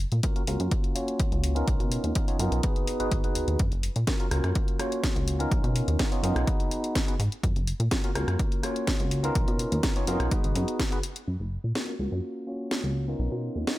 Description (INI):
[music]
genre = filtered disco house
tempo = 125 BPM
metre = 4/4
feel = straight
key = F# major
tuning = A4 = 440 Hz
[part]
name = plucky analog bass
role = bass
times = 0.0-13.6 s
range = F#1 to B2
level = -27 LUFS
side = equal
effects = tube saturation, sidechain pumping, low-pass filter
[part]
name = house drum kit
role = drums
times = 0.1-13.8 s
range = hi-hat, rim click, snare drum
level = -32 LUFS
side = left 1 dB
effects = sidechain pumping on hats
[part]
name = tine electric piano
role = accompaniment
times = 0.2-13.8 s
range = A#3 to C#5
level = -31 LUFS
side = equal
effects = phaser, vintage 12-bit sampler grit, sidechain pumping, low-pass filter
[part]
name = electronic kick drum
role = drums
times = 0.2-10.9 s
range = none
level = -27 LUFS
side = equal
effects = overdrive
[sound]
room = digital ambience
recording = none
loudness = -25 LUFS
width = side -16 dB against mid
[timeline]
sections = 0.0-11.3 A section; 11.3-13.8 B section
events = filter sweep 0.0-11.3, 11.3-13.8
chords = 0.0 F#maj7; 1.7 Bmaj9#11; 2.6 G#m7; 3.6 F#maj7; 5.5 Bmaj9#11; 6.5 G#m7; 7.4 F#maj7; 9.4 Bmaj9#11; 10.3 G#m7; 11.3 F#maj7; 13.2 Bmaj9#11